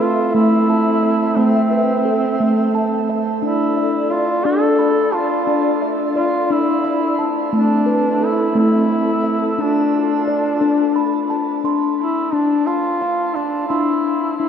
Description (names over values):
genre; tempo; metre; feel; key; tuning
world meditative, meditative tuned percussion; 58 BPM (dotted quarters); 6/8; straight; D minor; A4 = 440 Hz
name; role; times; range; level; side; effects
warm duduk; melody; 0.0-14.5 s; C4 to A4; -20 LUFS; equal; shimmer reverb, dub echo
mellow large flute ensemble; sustained chords; 0.0-11.6 s; C4 to E5; -23 LUFS; left 1 dB; shimmer reverb
steel tongue drum; arpeggios; 0.0-14.5 s; A3 to C6; -18 LUFS; left 1 dB; shimmer reverb, dub echo
room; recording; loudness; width
wet plate reverb, RT60 3.5 s; echo-heavy mix; -15 LUFS; side -8 dB against mid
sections
0.0-11.6 A section; 11.6-14.5 B section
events
none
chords
0.0 Am; 3.4 Dm; 7.5 Am; 9.6 Dm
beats
0.34 | 1.37 2.39 | 3.42 4.45 | 5.47 6.50 | 7.53 8.56 | 9.59 10.61 | 11.64 12.68 | 13.71